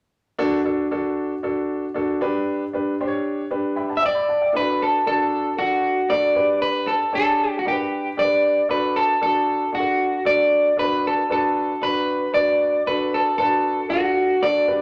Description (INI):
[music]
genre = soul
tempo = 116 BPM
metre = 4/4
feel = straight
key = D major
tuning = A4 = 442 Hz
[part]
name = clear upright piano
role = accompaniment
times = 0.4-14.8 s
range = D4 to B5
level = -27 LUFS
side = equal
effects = none
[part]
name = electric guitar through a small old amp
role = melody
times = 4.0-14.8 s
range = F#4 to E5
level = -21 LUFS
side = equal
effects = spring reverb
[sound]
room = wet studio reverb, RT60 0.5 s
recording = none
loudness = -21 LUFS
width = mono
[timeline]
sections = 0.4-4.5 A section; 4.5-14.8 B section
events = upright piano fill 3.5-4.5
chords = 0.4 D; 2.2 G; 4.5 D; 6.4 G; 8.7 D; 10.8 Bm/D; 12.9 D